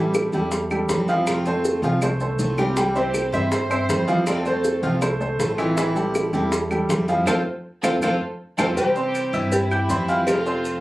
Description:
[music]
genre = latin, Cuban son and guajira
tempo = 160 BPM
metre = 4/4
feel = straight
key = C major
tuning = A4 = 440 Hz
[part]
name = picked steel-string acoustic guitar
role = accompaniment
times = 0.0-10.8 s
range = C3 to F4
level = -28 LUFS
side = left 1 dB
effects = none
[part]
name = clear baby grand piano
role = arpeggios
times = 0.0-10.8 s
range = E3 to G6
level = -23 LUFS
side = right 1 dB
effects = none
[part]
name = upright bass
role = bass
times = 0.0-10.8 s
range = A1 to G2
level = -27 LUFS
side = equal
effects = none
[part]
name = bongos and cowbell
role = percussion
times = 0.1-10.8 s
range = none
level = -28 LUFS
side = left 2 dB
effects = none
[part]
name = claves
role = percussion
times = 0.1-10.5 s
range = none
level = -33 LUFS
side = right 1 dB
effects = none
[part]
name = maracas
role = percussion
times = 0.1-10.8 s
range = none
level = -37 LUFS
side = equal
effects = none
[part]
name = warm studio violin section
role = second line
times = 2.9-5.0, 7.3-10.8 s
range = E4 to C5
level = -29 LUFS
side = equal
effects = none
[part]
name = nylon-string guitar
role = melody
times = 3.0-5.0, 7.3-10.8 s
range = G4 to F5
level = -25 LUFS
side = equal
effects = none
[sound]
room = light reverb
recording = recorded on a phone in the room, club ambience, compression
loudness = -19 LUFS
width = side -17 dB against mid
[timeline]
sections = 0.0-8.8 A section; 8.8-10.8 B section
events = drum fill 1.8-2.8, 8.0-8.8; band accent 7.3-8.8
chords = 0.0 Am7; 1.3 F; 2.8 C; 4.3 F; 5.8 Am7; 7.3 F; 8.8 C; 10.3 F

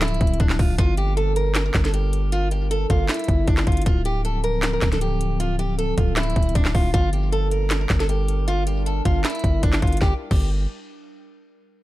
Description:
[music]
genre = hip hop, trap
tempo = 156 BPM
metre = 4/4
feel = half-time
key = G dorian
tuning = A4 = 441 Hz
[part]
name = picked old ladder-braced acoustic guitar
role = melody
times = 0.0-10.5 s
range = D4 to Bb4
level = -26 LUFS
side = right 1 dB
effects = ping-pong delay
[part]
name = warbly tape-like pad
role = sustained chords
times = 0.0-10.2 s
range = D3 to Bb4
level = -32 LUFS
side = left 1 dB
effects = chorus, built-in reverb
[part]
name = distorted 808-style bass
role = bass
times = 0.0-10.7 s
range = D1 to G1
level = -22 LUFS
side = equal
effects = distortion
[part]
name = trap drum kit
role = drums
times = 0.0-10.4 s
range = crash cymbal, handclaps, hi-hat, kick drum, snare drum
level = -21 LUFS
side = equal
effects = none
[sound]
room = digital ambience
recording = dark, warm production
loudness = -19 LUFS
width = side -16 dB against mid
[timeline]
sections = 0.0-3.9 A section; 3.9-10.0 B section; 10.0-11.6 C section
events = none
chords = 0.0 Dm7; 0.8 Gm; 3.9 Dm7; 6.9 Gm; 10.0 N.C.

